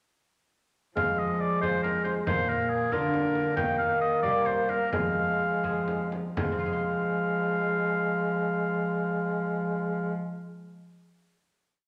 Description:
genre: classical, renaissance-style consort dance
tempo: 80-92 BPM (dotted quarters)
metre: 6/8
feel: straight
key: F dorian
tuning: A4 = 441 Hz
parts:
  - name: warm oboe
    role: melody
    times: 1.0-10.1 s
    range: Ab4 to G5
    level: -32 LUFS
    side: equal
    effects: none
  - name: dark bassoon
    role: accompaniment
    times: 1.0-10.1 s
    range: Ab3 to Bb3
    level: -32 LUFS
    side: equal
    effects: none
  - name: lute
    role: accompaniment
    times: 1.0-11.0 s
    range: Bb2 to C5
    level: -40 LUFS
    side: equal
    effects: none
  - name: warm cello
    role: bass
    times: 1.0-10.1 s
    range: Bb2 to G3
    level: -35 LUFS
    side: equal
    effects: none
  - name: frame drum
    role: percussion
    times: 1.0-6.6 s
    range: none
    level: -38 LUFS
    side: equal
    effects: none
room: wet recital hall reverb, RT60 1.4 s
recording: none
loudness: -28 LUFS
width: mono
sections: 1.0-6.4 A section; 6.4-9.4 final chord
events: slowing down 2.9-6.4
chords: 1.0 Fm; 2.3 Bb; 3.6 Eb; 4.9 Fm

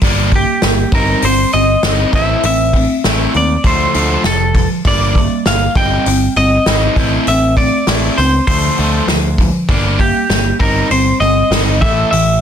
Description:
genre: indie rock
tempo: 99 BPM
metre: 4/4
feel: straight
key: G minor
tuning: A4 = 440 Hz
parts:
  - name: biting overdriven guitar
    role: riff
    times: 0.0-12.4 s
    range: A2 to E4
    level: -16 LUFS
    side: equal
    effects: none
  - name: picked electric bass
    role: bass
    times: 0.0-12.4 s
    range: F1 to Eb2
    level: -17 LUFS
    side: equal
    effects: none
  - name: unplugged drum kit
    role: drums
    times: 0.0-12.3 s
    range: hi-hat, kick drum, snare drum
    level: -17 LUFS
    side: equal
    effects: none
  - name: clean electric guitar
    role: melody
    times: 0.4-12.4 s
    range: G4 to G5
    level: -16 LUFS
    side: equal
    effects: slapback echo
room: light reverb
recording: dense, heavily limited modern master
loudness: -11 LUFS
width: side -8 dB against mid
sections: 0.0-12.4 A section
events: none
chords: 0.0 Gm; 0.9 Cm/G; 2.1 Am; 3.6 Dm7; 4.9 Gm; 5.8 Cm/G; 7.0 Am; 8.5 Dm7; 9.7 Gm; 10.6 Cm/G; 11.8 A5

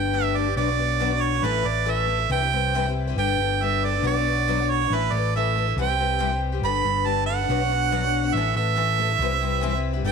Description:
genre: folk rock and heartland rock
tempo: 139 BPM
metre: 4/4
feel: straight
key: unclear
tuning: A4 = 440 Hz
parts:
  - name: clear harmonica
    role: melody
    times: 0.0-10.1 s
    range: B4 to B5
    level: -24 LUFS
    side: right 10 dB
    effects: none
  - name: picked twelve-string acoustic guitar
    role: accompaniment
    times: 0.0-10.1 s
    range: A2 to C#5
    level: -26 LUFS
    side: left 12 dB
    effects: none
  - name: picked electric bass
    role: bass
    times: 0.0-10.1 s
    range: G1 to C2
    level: -26 LUFS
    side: equal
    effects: none
room: moderate echo chamber reverb, RT60 2.3 s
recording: 1960s-style stereo with parts hard left and right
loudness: -20 LUFS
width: side -6 dB against mid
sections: 0.0-10.1 A section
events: none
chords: 0.0 Gadd9; 0.6 Bmadd9; 1.4 Asus2; 2.3 Cmaj7; 3.2 Gadd9; 4.0 Bmadd9; 4.9 Asus2; 5.8 Cmaj7; 6.6 Gadd9; 7.5 Bmadd9; 8.3 Asus2; 9.2 Cmaj7

